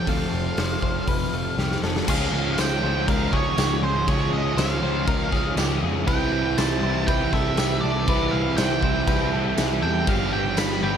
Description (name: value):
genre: rock, shoegaze and dream pop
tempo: 120 BPM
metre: 4/4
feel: straight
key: unclear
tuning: A4 = 440 Hz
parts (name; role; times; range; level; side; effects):
- octave-fuzz lead guitar; melody; 0.0-11.0 s; C5 to B5; -28 LUFS; right 2 dB; distortion, tape echo
- analog string pad; sustained chords; 0.0-11.0 s; F3 to F5; -36 LUFS; equal; none
- clean electric guitar; arpeggios; 0.0-11.0 s; G4 to C5; -32 LUFS; left 8 dB; lush chorus, tape echo
- overdriven semi-hollow guitar; riff; 0.0-11.0 s; F2 to G4; -27 LUFS; right 10 dB; reverse reverb
- thick fuzz guitar; riff; 0.0-11.0 s; F2 to Db4; -30 LUFS; left 11 dB; distortion, ensemble chorus
- vintage muted picked electric bass; bass; 0.1-11.0 s; F1 to F2; -27 LUFS; equal; none
- raw garage drum kit; drums; 0.1-10.8 s; crash cymbal, hi-hat, kick drum, snare drum; -26 LUFS; equal; none
- tambourine; percussion; 2.6-10.7 s; none; -36 LUFS; right 9 dB; none
room: light reverb, studio reverb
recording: none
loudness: -20 LUFS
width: side -8 dB against mid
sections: 0.0-2.1 A section; 2.1-11.0 B section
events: drum fill 1.6-2.1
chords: 0.0 F; 2.1 Dbmaj7; 6.1 Cmaj7; 10.1 G7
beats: | 0.07 0.58 1.08 1.58 | 2.08 2.58 3.08 3.58 | 4.08 4.58 5.08 5.58 | 6.08 6.58 7.08 7.58 | 8.08 8.58 9.08 9.58 | 10.08 10.58